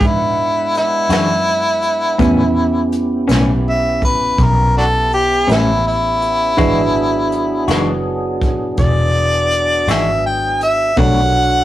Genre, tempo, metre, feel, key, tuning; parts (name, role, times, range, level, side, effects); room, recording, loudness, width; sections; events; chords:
slow blues; 55 BPM (dotted quarters); 12/8; straight; E mixolydian; A4 = 441 Hz
clear harmonica; melody; 0.0-11.6 s; D4 to G5; -16 LUFS; equal; overdrive
tine electric piano; accompaniment; 0.0-11.6 s; G#3 to C#5; -22 LUFS; right 2 dB
tonewheel organ; sustained chords; 0.0-11.6 s; D#3 to F#5; -25 LUFS; right 1 dB; overdrive, chorus vibrato, slow rotary speaker
vintage muted fingered electric bass; bass; 0.0-11.6 s; E1 to G#2; -20 LUFS; equal
vintage brush drum kit; drums; 0.0-11.1 s; hi-hat, kick drum, snare drum; -20 LUFS; equal
semi-hollow electric guitar; accompaniment; 1.1-11.2 s; A2 to F#4; -17 LUFS; left 2 dB; tremolo
moderate small room ambience, RT60 0.5 s; rough rehearsal-room recording, warm saturation; -13 LUFS; side -14 dB against mid
0.0-11.6 A section
harmonica solo 0.0-11.6
0.0 E9; 2.2 A9; 6.6 E9; 11.0 Bm7